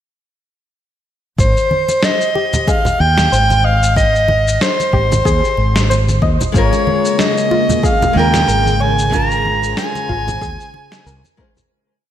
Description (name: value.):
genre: sunset chillout.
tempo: 93 BPM.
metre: 4/4.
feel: swing 56% on 16ths.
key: Ab major.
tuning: A4 = 444 Hz.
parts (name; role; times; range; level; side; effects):
breathy soprano saxophone; melody; 1.4-11.4 s; C5 to Bb5; -16 LUFS; equal; digital delay.
mellow fretless electric bass; bass; 1.4-11.2 s; Ab1 to Eb2; -16 LUFS; equal; none.
electronic kick drum; drums; 1.4-11.5 s; none; -18 LUFS; equal; overdrive, studio reverb.
electronic shaker and snare drum; drums; 1.4-11.7 s; none; -21 LUFS; left 1 dB; studio reverb, gated reverb.
congas; percussion; 1.6-11.7 s; none; -24 LUFS; right 1 dB; none.
soft round pluck; arpeggios; 2.4-11.7 s; F4 to Eb5; -24 LUFS; left 2 dB; chorus, digital delay.
nylon-string guitar; accompaniment; 6.5-11.5 s; Ab3 to C5; -20 LUFS; moving between left 6 dB and right 3 dB; auto-pan, vintage 12-bit sampler grit, digital delay.
soft string machine; sustained chords; 6.9-11.7 s; Db3 to C5; -22 LUFS; right 1 dB; ensemble chorus.
room: moderate lush hall reverb, RT60 2.7 s.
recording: bright 1980s-style digital production.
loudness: -12 LUFS.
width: side -10 dB against mid.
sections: 1.4-11.7 groove.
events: fade-out 8.3-11.7.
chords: 1.4 Abmaj7; 6.5 Bbm7/Ab.